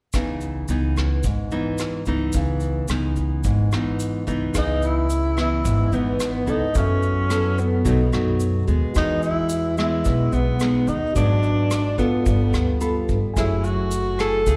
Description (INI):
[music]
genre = bossa nova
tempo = 109 BPM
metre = 4/4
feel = straight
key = C# minor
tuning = A4 = 440 Hz
[part]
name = nylon-string guitar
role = accompaniment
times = 0.1-14.6 s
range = G#2 to A4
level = -27 LUFS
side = equal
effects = plate reverb, slapback echo
[part]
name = upright bass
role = bass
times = 0.1-14.6 s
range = F#1 to F#2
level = -25 LUFS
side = equal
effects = none
[part]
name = vintage brush drum kit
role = drums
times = 0.1-14.6 s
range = hi-hat, kick drum, rim click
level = -28 LUFS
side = equal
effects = none
[part]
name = egg shaker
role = percussion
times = 0.1-14.6 s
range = none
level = -41 LUFS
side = equal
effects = slapback echo
[part]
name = dark concert grand piano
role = accompaniment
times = 4.5-14.6 s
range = A3 to B5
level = -38 LUFS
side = equal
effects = plate reverb, slapback echo
[part]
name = breathy tenor saxophone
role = melody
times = 4.6-14.6 s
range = B3 to A4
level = -26 LUFS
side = equal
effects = plate reverb, slapback echo
[sound]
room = moderate club reverb, RT60 0.6 s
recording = live gig heard through the venue's PA, recital hall reverb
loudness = -22 LUFS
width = mono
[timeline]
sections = 0.1-4.5 A section; 4.5-14.6 B section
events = grand piano fill 12.5-13.4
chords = 0.1 C#m9; 6.8 F#m7; 7.9 B7; 9.0 Emaj7; 11.2 G#m7b5; 12.3 G9; 13.4 F#m9